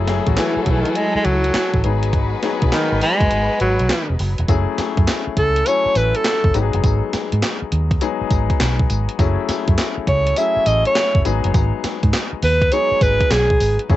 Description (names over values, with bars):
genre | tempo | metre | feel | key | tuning
R&B, new jack swing | 102 BPM | 4/4 | swing 66% on 16ths | unclear | A4 = 441 Hz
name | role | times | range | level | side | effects
warm concert grand piano | accompaniment | 0.0-14.0 s | F#3 to G#5 | -24 LUFS | left 9 dB | none
warm symphonic string section | sustained chords | 0.0-4.5, 13.9-14.0 s | F#3 to G#5 | -26 LUFS | left 1 dB | none
vintage muted fingered electric bass | bass | 0.0-14.0 s | E1 to G#2 | -20 LUFS | equal | none
gated 80s digital drum machine | drums | 0.1-14.0 s | handclaps, hi-hat, kick drum, snare drum, tambourine | -20 LUFS | right 1 dB | gated reverb, gated reverb snare
breathy alto saxophone | melody | 0.4-6.5, 10.1-13.8 s | D#3 to E5 | -18 LUFS | right 1 dB | cassette tape
room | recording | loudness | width
little or no reverb | home recording on cassette, nothing above 8.0 kHz | -15 LUFS | side -14 dB against mid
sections
0.0-4.5 A section; 4.5-14.0 B section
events
kick muted 3.3-4.5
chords
0.0 F#m9; 1.8 G#m7; 4.5 F#m9; 6.5 G#m7; 9.2 F#m9; 11.2 G#m7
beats
0.37 0.95 1.54 | 2.13 2.72 3.31 3.90 | 4.49 5.07 5.66 6.25 | 6.84 7.43 8.01 8.60 | 9.19 9.78 10.37 10.96 | 11.54 12.13 12.72 13.31 | 13.90